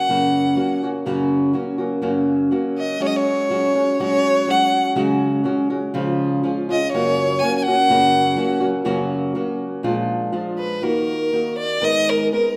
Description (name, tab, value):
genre	mexican folk, mariachi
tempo	123 BPM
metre	2/4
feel	rubato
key	F# major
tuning	A4 = 444 Hz
part	rich violin	melody	0.0-12.6 s	Bb4 to G#5	-21 LUFS	equal	none
part	nylon-string guitar	accompaniment	0.0-12.6 s	F#2 to Bb4	-22 LUFS	equal	none
room	wet recital hall reverb, RT60 1.9 s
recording	none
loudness	-20 LUFS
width	mono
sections	0.0-3.0 A section; 3.0-10.8 A section; 10.8-12.6 B section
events	none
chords	0.0 F#; 3.0 F#sus2; 5.0 C#sus4; 5.9 C#; 6.9 F#; 9.8 A#7; 10.8 Ebm; 11.8 Abmadd9